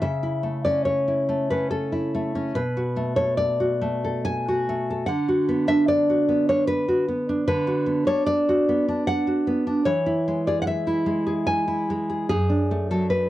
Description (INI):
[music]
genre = romantic piece for solo classical guitar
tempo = 66-77 BPM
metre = 3/4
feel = rubato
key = unclear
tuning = A4 = 440 Hz
[part]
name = nylon-string guitar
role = solo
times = 0.0-13.3 s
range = F#2 to G#5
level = -21 LUFS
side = equal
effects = cassette tape
[sound]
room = moderate studio ambience, RT60 0.5 s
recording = home recording on cassette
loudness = -21 LUFS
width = side -14 dB against mid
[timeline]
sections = 0.0-13.3 A section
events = none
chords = 0.1 A/C#; 2.6 Bm7; 5.1 Bm/D; 9.9 E; 12.3 D/F#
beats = | 0.05 0.90 1.75 | 2.57 3.38 4.26 | 5.09 5.89 6.69 | 7.49 8.28 9.06 | 9.85 10.68 11.48 | 12.29 13.11